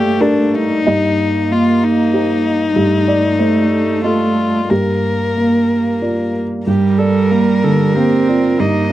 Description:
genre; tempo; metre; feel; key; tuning
neoclassical piano and strings; 93 BPM; 3/4; uneven beats, rubato; G minor; A4 = 440 Hz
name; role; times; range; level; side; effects
warm violin; melody; 0.0-8.9 s; D4 to Eb5; -18 LUFS; left 3 dB; none
felt-muted upright piano; accompaniment; 0.0-8.9 s; G2 to Eb5; -16 LUFS; equal; none
warm viola; accompaniment; 0.0-8.9 s; A3 to Bb4; -19 LUFS; right 2 dB; none
rich cello; second line; 6.7-8.9 s; G3 to C4; -15 LUFS; right 5 dB; none
room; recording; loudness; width
light reverb; dark, warm production; -12 LUFS; side -14 dB against mid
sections
0.0-6.7 A section; 6.7-8.9 B section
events
none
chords
0.0 Gmadd9; 0.9 Cm7/G; 2.8 F7/G; 4.7 Gm7; 6.7 Gm

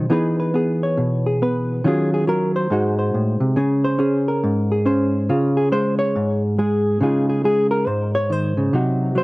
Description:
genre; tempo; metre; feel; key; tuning
solo jazz; 139 BPM; 4/4; swing 65% on 8ths; Db major; A4 = 440 Hz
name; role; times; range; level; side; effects
hollow-body jazz guitar; solo; 0.0-9.2 s; Ab2 to Db5; -17 LUFS; equal; none
room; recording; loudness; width
little or no reverb; recorded outdoors, with no room sound; -17 LUFS; side -21 dB against mid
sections
0.0-7.0 A section; 7.0-9.2 A section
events
hollow-body jazz guitar solo 0.0-9.2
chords
0.1 Emaj7; 1.8 Ebm11; 2.7 Ab7b9; 3.6 Dbmaj7; 7.0 Dbmaj9; 8.7 Cdim

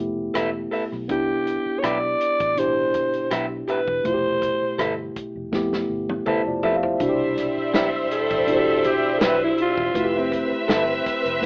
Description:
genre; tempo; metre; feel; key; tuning
lush 1970s-style soul; 81 BPM; 4/4; swing 54% on 16ths; C major; A4 = 440 Hz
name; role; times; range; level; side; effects
mellow tine electric piano; accompaniment; 0.0-11.5 s; B2 to A5; -25 LUFS; equal; fast stereo tremolo
vintage muted fingered electric bass; bass; 0.0-11.5 s; E1 to F2; -38 LUFS; equal; none
electric guitar through a small old amp; riff; 0.3-10.8 s; G4 to E5; -24 LUFS; equal; none
warm soul drum kit; drums; 0.3-11.5 s; hi-hat, kick drum, rim click, snare drum, toms; -27 LUFS; equal; none
breathy alto saxophone; melody; 1.1-10.5 s; C4 to D5; -22 LUFS; equal; none
warm studio string section; second line; 7.0-11.5 s; G3 to E5; -23 LUFS; equal; none
room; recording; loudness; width
wet studio reverb, RT60 0.5 s; rough home demo mix, AM radio sound; -20 LUFS; side -35 dB against mid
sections
0.0-7.0 A section; 7.0-11.5 B section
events
drum fill 5.5-7.0; tine electric piano fill 5.9-7.0; alto saxophone solo 7.0-11.5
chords
0.0 Fmaj9#11; 1.1 Cmaj7; 4.1 Fmaj9#11; 7.0 Cmaj7; 10.0 Fmaj9#11

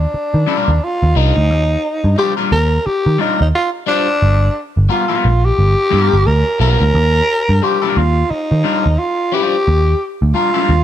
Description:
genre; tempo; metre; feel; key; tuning
funk; 88 BPM; 4/4; swing 60% on 16ths; unclear; A4 = 440 Hz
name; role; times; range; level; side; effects
growling tenor saxophone; melody; 0.0-10.8 s; D4 to A#4; -16 LUFS; equal; none
vintage muted picked electric bass; bass; 0.0-10.8 s; G1 to Eb3; -13 LUFS; right 1 dB; none
electric guitar at the edge of break-up; accompaniment; 0.5-10.7 s; G3 to C5; -20 LUFS; left 6 dB; phaser
room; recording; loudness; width
light reverb; none; -12 LUFS; side -11 dB against mid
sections
0.0-10.8 A section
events
none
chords
0.0 Ebmaj9; 4.2 G7#9; 6.9 Ebmaj9

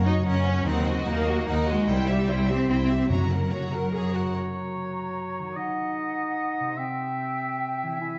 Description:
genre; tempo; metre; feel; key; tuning
cinematic; 147 BPM; 3/4; straight; Gb lydian; A4 = 439 Hz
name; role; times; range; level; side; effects
rich symphonic violin section; melody; 0.0-4.3 s; Db5 to Bb5; -39 LUFS; equal; none
rich symphonic violin section; second line; 0.0-4.3 s; Gb4 to E5; -37 LUFS; equal; none
rich symphonic viola section; accompaniment; 0.0-4.3 s; Db4 to Bb4; -35 LUFS; equal; none
concert harp; arpeggios; 0.0-8.2 s; Gb2 to Db6; -35 LUFS; equal; none
rich studio double bass section; bass; 0.0-4.3 s; C2 to Gb2; -30 LUFS; equal; none
warm symphonic cello section; bass; 0.0-4.1 s; Gb3 to Eb4; -29 LUFS; equal; none
timpani; percussion; 3.1-3.7 s; Gb2; -35 LUFS; equal; none
clear oboe; second line; 4.3-8.2 s; Db5 to E5; -34 LUFS; equal; none
mellow small flute group; second line; 4.3-8.2 s; Gb5 to Bb5; -35 LUFS; equal; none
warm clarinet; second line; 4.3-8.2 s; C4 to Gb4; -37 LUFS; equal; none
room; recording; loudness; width
wet scoring stage reverb, RT60 1.6 s; nothing above 7.7 kHz; -26 LUFS; mono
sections
0.0-4.3 A section; 4.3-8.2 B section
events
none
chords
0.0 Gb; 0.7 Ebm; 1.9 C; 3.1 Gb; 5.6 Ebm; 6.8 C

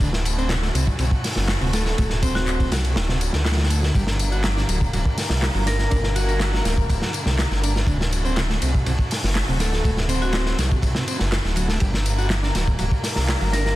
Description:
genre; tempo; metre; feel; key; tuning
breakbeat, breaks; 122 BPM; 4/4; straight; G harmonic minor; A4 = 437 Hz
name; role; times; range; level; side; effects
muted studio string section; sustained chords; 0.0-13.8 s; D3 to Bb4; -30 LUFS; equal; sidechain pumping
overdriven combo organ; riff; 0.0-13.6 s; C3 to F#4; -29 LUFS; equal; vintage 12-bit sampler grit, ping-pong delay
detuned saw bass; bass; 0.0-13.7 s; D1 to D2; -22 LUFS; equal; none
crunchy breakbeat drum kit; drums; 0.0-13.8 s; hi-hat, kick drum, ride cymbal, snare drum; -23 LUFS; equal; none
house drum kit; drums; 0.0-13.8 s; handclaps, ride cymbal, tambourine; -31 LUFS; left 2 dB; none
marimba with hard mallets; melody; 1.7-13.7 s; F#4 to Bb4; -31 LUFS; left 1 dB; AM radio sound, ping-pong delay
room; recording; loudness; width
small room ambience; dense, heavily limited modern master; -19 LUFS; side -16 dB against mid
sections
0.0-13.8 A section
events
none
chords
0.0 D; 3.9 Gm; 7.9 D; 11.8 Gm

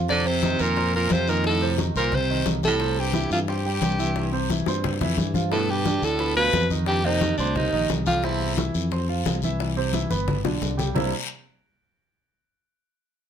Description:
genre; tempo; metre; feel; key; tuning
Afro-Cuban jazz; 177 BPM; 4/4; straight; unclear; A4 = 439 Hz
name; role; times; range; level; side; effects
warm concert grand piano; accompaniment; 0.0-11.1 s; B2 to C6; -28 LUFS; right 4 dB; none
fingered electric bass; bass; 0.0-11.1 s; G1 to G2; -27 LUFS; left 1 dB; none
breathy alto saxophone; melody; 0.1-8.6 s; D4 to D5; -25 LUFS; left 1 dB; none
bright baritone saxophone; second line; 0.1-8.6 s; D2 to D3; -28 LUFS; right 5 dB; none
bongos; percussion; 0.1-11.0 s; none; -33 LUFS; left 8 dB; none
congas; percussion; 0.1-11.0 s; none; -29 LUFS; left 1 dB; none
guiro; percussion; 0.1-11.0 s; none; -35 LUFS; left 7 dB; none
room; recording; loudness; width
moderate studio reverb, RT60 0.6 s; none; -21 LUFS; side -8 dB against mid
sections
0.0-11.0 A section; 11.0-12.3 B section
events
drum fill 4.7-5.5, 10.1-11.0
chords
0.1 F9; 2.8 C; 5.5 G9; 6.9 Fsus2; 8.2 F5; 9.6 C; 10.3 G; 11.0 C9

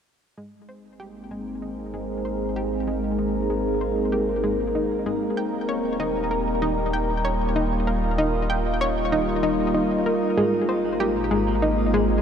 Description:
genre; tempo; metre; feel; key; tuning
ambient, sequencer-driven space music; 96 BPM; 4/4; straight; unclear; A4 = 440 Hz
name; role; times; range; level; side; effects
evolving wavetable pad; sustained chords; 1.2-12.2 s; G3 to Bb4; -24 LUFS; equal; phaser, built-in reverb
analog pluck; riff; 0.4-12.2 s; Ab3 to G5; -27 LUFS; equal; chorus, ping-pong delay, shimmer reverb
round analog bass; bass; 0.4-12.2 s; Eb1 to Ab1; -30 LUFS; equal; none
clean electric guitar; arpeggios; 10.4-12.1 s; Bb2 to F4; -40 LUFS; left 4 dB; none
room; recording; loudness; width
wet huge ambient reverb, RT60 7.5 s; dark, warm production; -21 LUFS; side -8 dB against mid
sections
0.4-10.4 A section; 10.4-12.2 B section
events
fade-in on synth arpeggio sound 0.4-10.4; fade-in on analog synth bass 0.4-10.4; filter sweep on ambient pad 0.4-10.4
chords
0.4 Abadd9; 5.4 Ebadd9; 10.4 Abadd9

